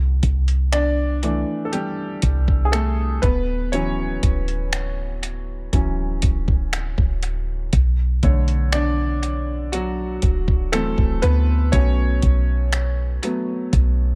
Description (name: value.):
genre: contemporary R&B.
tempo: 60 BPM.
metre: 4/4.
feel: straight.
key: D major.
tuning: A4 = 440 Hz.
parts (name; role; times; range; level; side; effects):
clean 808-style bass; bass; 0.0-14.2 s; D1 to D2; -23 LUFS; equal; none.
clean 12-bit digital drum machine; drums; 0.2-14.0 s; finger snaps, hi-hat, kick drum; -23 LUFS; equal; none.
clear grand piano; accompaniment; 0.7-14.2 s; D3 to D5; -27 LUFS; equal; none.
room: little or no reverb.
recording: echo-heavy mix.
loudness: -21 LUFS.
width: mono.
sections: 0.0-14.2 A section.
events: grand piano solo 0.0-14.2.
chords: 0.0 C69; 3.2 Dmaj9; 7.7 Bm9; 10.7 D9; 11.7 F#madd11/B.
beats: 0.73 1.73 2.73 | 3.73 4.73 5.73 6.73 | 7.73 8.73 9.73 10.73 | 11.73 12.73 13.73.